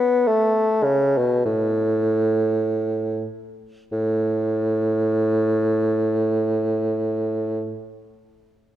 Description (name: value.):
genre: classical, baroque-style fantasia for unaccompanied bassoon.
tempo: free time.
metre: none.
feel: none.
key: A major.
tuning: A4 = 440 Hz.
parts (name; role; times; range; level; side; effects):
breathy bassoon; solo; 0.0-7.8 s; A2 to B3; -19 LUFS; equal; none.
room: moderate concert hall reverb, RT60 1.9 s.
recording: none.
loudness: -19 LUFS.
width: side -12 dB against mid.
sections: 0.0-3.9 A section; 3.9-7.6 B section.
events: slowing down 0.0-3.9.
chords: none.